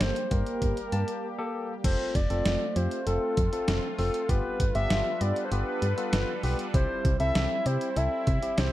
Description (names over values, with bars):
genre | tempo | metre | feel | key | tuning
synth-pop | 98 BPM | 4/4 | straight | F major | A4 = 444 Hz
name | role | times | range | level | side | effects
hollow clarinet-like synth lead | melody | 0.0-8.7 s | A4 to E5 | -31 LUFS | equal | chorus, ping-pong delay
barky tine electric piano | accompaniment | 0.0-8.7 s | Bb3 to A5 | -34 LUFS | left 4 dB | none
sweeping resonant pad | sustained chords | 0.0-8.7 s | G3 to B4 | -36 LUFS | right 3 dB | chorus
solid FM bass | bass | 0.0-8.7 s | F1 to C3 | -28 LUFS | equal | none
detuned 8-bit digital drum machine | drums | 0.0-8.7 s | crash cymbal, hi-hat, kick drum, snare drum | -29 LUFS | equal | none
room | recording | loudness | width
little or no reverb | dark, warm production | -25 LUFS | side -14 dB against mid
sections
0.0-1.8 A section; 1.8-8.7 B section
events
break 1.2-1.8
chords
0.0 Gmadd9; 1.8 F; 4.3 G7; 6.7 C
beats
0.01 0.62 1.23 | 1.84 2.46 3.07 3.68 | 4.29 4.91 5.52 6.13 | 6.74 7.35 7.97 8.58